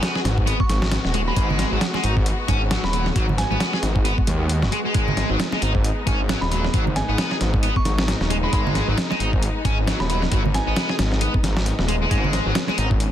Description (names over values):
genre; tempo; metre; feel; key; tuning
breakbeat, breaks; 134 BPM; 4/4; swing 58% on 16ths; G# minor; A4 = 442 Hz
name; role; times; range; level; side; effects
rich symphonic string section; sustained chords; 0.0-13.1 s; G#3 to F#4; -30 LUFS; left 2 dB; vintage 12-bit sampler grit, sidechain pumping
sludgy distorted guitar; riff; 0.0-12.9 s; F#3 to G#4; -26 LUFS; left 1 dB; overdrive, vintage 12-bit sampler grit, dub echo
dusty soul sampler-style drum kit; drums; 0.0-13.1 s; hi-hat, kick drum, snare drum; -23 LUFS; equal; studio reverb
detuned saw bass; bass; 0.2-13.1 s; D#1 to D#2; -23 LUFS; equal; none
glassy synth bell; melody; 0.6-3.5, 6.4-10.7 s; G#5 to C#6; -32 LUFS; right 2 dB; chorus, small speaker sound, dub echo
congas; percussion; 1.5-12.8 s; none; -30 LUFS; right 4 dB; none
room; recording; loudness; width
light reverb; dense, heavily limited modern master; -18 LUFS; side -11 dB against mid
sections
0.0-13.1 A section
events
none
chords
0.0 G#m